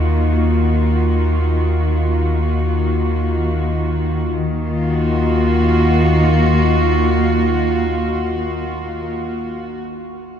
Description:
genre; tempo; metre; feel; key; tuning
dark ambient drone; free time; none; none; Eb minor; A4 = 441 Hz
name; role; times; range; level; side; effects
warm chamber cello section; sustained chords; 0.0-9.8 s; Eb3 to Gb4; -18 LUFS; equal; shimmer reverb
deep rumbling drone; drone; 0.0-9.2 s; Eb2 to Eb3; -18 LUFS; equal; built-in reverb
room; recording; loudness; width
wet cathedral reverb, RT60 4.9 s; dark, warm production, faint mains hum; -15 LUFS; side -8 dB against mid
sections
0.0-4.3 A section; 4.3-9.4 B section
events
none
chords
0.0 Ebmadd9

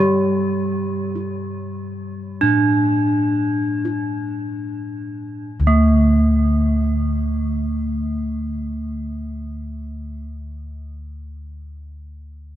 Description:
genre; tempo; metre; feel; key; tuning
Javanese gamelan; 35-54 BPM; 4/4; straight; unclear; A4 = 441 Hz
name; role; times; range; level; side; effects
gamelan-type bronze metallophone; accompaniment; 0.0-10.3 s; G3-20c to D4; -20 LUFS; right 1 dB; none
gamelan-type bossed gongs; bass; 0.0-10.2 s; D2 to G4-20c; -23 LUFS; left 1 dB; none
room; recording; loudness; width
moderate huge ambient reverb, RT60 7.1 s; in a vast, echoing space; -18 LUFS; side -12 dB against mid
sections
0.0-5.5 A section; 5.5-12.4 B section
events
slowing down 0.0-5.5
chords
none

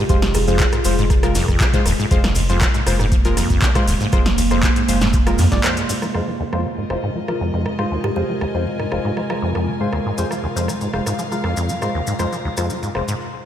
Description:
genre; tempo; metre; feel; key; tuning
acid house; 119 BPM; 4/4; straight; unclear; A4 = 440 Hz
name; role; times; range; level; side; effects
kalimba; melody; 0.0-0.6, 8.0-8.2 s; G4 to Ab4; -27 LUFS; right 2 dB; ping-pong delay
warbly tape-like pad; sustained chords; 0.0-13.2 s; C3 to F4; -26 LUFS; right 1 dB; chorus, built-in reverb, sidechain pumping
acid bass, saw; riff; 0.0-13.1 s; F1 to Ab3; -23 LUFS; equal; wide subtle chorus, ping-pong delay
deep mellow chord stab; stabs; 0.1-13.0 s; Ab3 to D5; -25 LUFS; left 1 dB; chorus, ping-pong delay
warm sub bass; bass; 0.1-5.6 s; Eb1 to F2; -20 LUFS; equal; sidechain pumping
electro analog drum machine; drums; 0.1-13.1 s; handclaps, hi-hat, ride cymbal, rim click, snare drum; -25 LUFS; right 1 dB; overdrive
electronic kick drum; drums; 0.1-5.6 s; none; -18 LUFS; equal; overdrive
maracas; percussion; 0.1-6.1, 10.2-13.2 s; none; -32 LUFS; left 3 dB; none
rich chamber string section; texture; 6.1-13.2 s; F4 to Bb5; -31 LUFS; left 2 dB; sidechain pumping
room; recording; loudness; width
moderate lush hall reverb, RT60 1.9 s, digital ambience; dreamy mix soaked in reverb; -16 LUFS; side -10 dB against mid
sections
0.0-6.1 A section; 6.1-13.5 B section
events
drop 0.0-6.1; break 5.6-6.1, 13.2; filter sweep on acid bass 6.1-13.5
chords
0.0 Fm

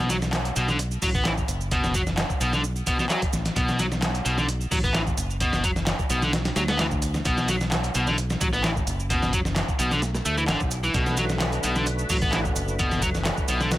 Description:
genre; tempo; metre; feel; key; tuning
breakbeat, breaks; 130 BPM; 4/4; swing 53% on 16ths; B minor; A4 = 440 Hz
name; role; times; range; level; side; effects
biting overdriven guitar; riff; 0.0-13.7 s; B2 to B3; -26 LUFS; equal; tape echo
modern bright fingered electric bass; bass; 0.0-13.8 s; F#1 to D2; -28 LUFS; equal; tube saturation
dusty soul sampler-style drum kit; drums; 0.1-13.8 s; hi-hat, kick drum, snare drum; -27 LUFS; equal; none
electronic shaker and handclaps; drums; 0.1-13.8 s; none; -32 LUFS; right 1 dB; none
tonewheel organ; sustained chords; 10.9-13.8 s; D3 to B4; -32 LUFS; equal; overdrive, chorus vibrato, slow rotary speaker, sidechain pumping
room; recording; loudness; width
light reverb; none; -22 LUFS; side -16 dB against mid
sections
0.0-13.8 A section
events
none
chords
0.0 Bm7

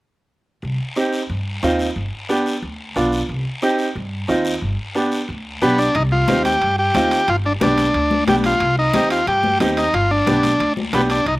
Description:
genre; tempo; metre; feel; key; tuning
latin, cumbia; 180 BPM; 4/4; straight; C harmonic minor; A4 = 440 Hz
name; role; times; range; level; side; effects
upright bass; bass; 0.6-11.4 s; G1 to G2; -24 LUFS; equal; none
guiro; percussion; 0.6-11.4 s; none; -30 LUFS; left 2 dB; none
bright upright piano; accompaniment; 1.0-11.2 s; B3 to G4; -20 LUFS; right 1 dB; none
overdriven combo organ; melody; 5.6-11.3 s; B3 to G4; -17 LUFS; equal; none
timbales; percussion; 5.9-11.4 s; none; -29 LUFS; right 3 dB; none
congas; percussion; 6.1-11.1 s; none; -24 LUFS; left 4 dB; none
room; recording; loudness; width
little or no reverb; recorded outdoors, with no room sound; -16 LUFS; side -18 dB against mid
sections
0.6-6.0 A section; 6.0-11.4 B section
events
none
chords
0.6 Cm; 2.0 G7; 3.3 Cm; 4.6 G; 6.0 Cm; 7.3 G; 8.6 Cm; 9.9 G

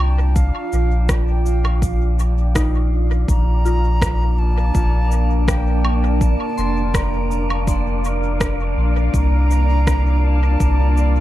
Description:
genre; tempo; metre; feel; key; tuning
ambient dub; 82 BPM; 4/4; straight; unclear; A4 = 440 Hz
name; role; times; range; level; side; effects
wooden flute; melody; 0.0-11.2 s; F5 to Bb5; -29 LUFS; equal; dub echo
deep dark ambient pad; sustained chords; 0.0-11.2 s; Bb3 to F5; -26 LUFS; right 2 dB; chorus, built-in reverb
soft synth bell; arpeggios; 0.0-11.2 s; Eb4 to C6; -31 LUFS; left 3 dB; chorus, dub echo
soft dub sub bass; bass; 0.0-11.2 s; F1 to C2; -17 LUFS; equal; none
wind-like tuned noise texture; texture; 0.0-11.2 s; D4 to D5; -29 LUFS; left 2 dB; built-in reverb
electronic cabasa, rim click and woodblock; drums; 0.4-11.1 s; none; -27 LUFS; equal; dub echo
electronic kick drum; drums; 0.4-10.8 s; none; -21 LUFS; equal; overdrive
room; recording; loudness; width
little or no reverb; echo-heavy mix; -15 LUFS; side -14 dB against mid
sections
0.0-11.2 A section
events
none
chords
0.0 Cm11; 3.3 Bbmaj7; 9.1 C9sus4

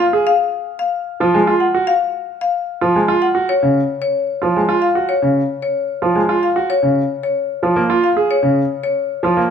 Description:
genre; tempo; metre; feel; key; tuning
classical, minimalist pattern music; 112 BPM; 3/4; straight; unclear; A4 = 440 Hz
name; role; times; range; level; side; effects
marimba with hard mallets; melody; 0.0-9.0 s; Db5 to Gb5; -19 LUFS; left 6 dB; none
bright concert grand piano; arpeggios; 0.0-9.4 s; F4 to Ab4; -18 LUFS; right 4 dB; none
bright baby grand piano; accompaniment; 1.2-9.5 s; Db3 to Bb3; -18 LUFS; right 1 dB; none
room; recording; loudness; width
moderate large studio reverb, RT60 1.3 s; minimal, uncompressed stereo recording; -14 LUFS; side -7 dB against mid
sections
0.0-9.5 A section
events
none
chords
0.3 Fm; 3.5 Gbsus2 (rootless); 6.7 Db6

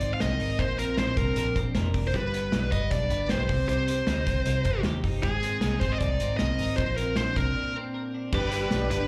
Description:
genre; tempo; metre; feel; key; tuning
jangly indie pop; 155 BPM; 4/4; straight; unclear; A4 = 440 Hz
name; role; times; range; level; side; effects
high-gain lead guitar; melody; 0.0-9.1 s; Ab4 to F5; -32 LUFS; equal; distortion, slapback echo
twelve-string electric guitar; arpeggios; 0.0-9.1 s; G2 to Bb4; -35 LUFS; equal; lush chorus, slapback echo
vintage muted picked electric bass; bass; 0.0-9.1 s; F1 to Eb2; -32 LUFS; equal; none
loose indie drum kit; drums; 0.0-9.0 s; crash cymbal, hi-hat, kick drum, snare drum; -33 LUFS; equal; none
combo organ; accompaniment; 8.3-9.1 s; D4 to D5; -35 LUFS; equal; slapback echo
fingerpicked plugged-in twelve-string acoustic guitar; accompaniment; 8.3-9.1 s; G3 to G4; -38 LUFS; equal; none
room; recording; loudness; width
light reverb, small room ambience; live gig heard through the venue's PA, club reverb; -27 LUFS; mono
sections
0.0-8.3 A section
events
break 7.6-8.3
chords
0.0 Abadd9; 0.6 Bbadd9; 2.1 G; 3.5 Cm; 5.2 Abadd9; 6.8 Bbadd9; 8.3 G

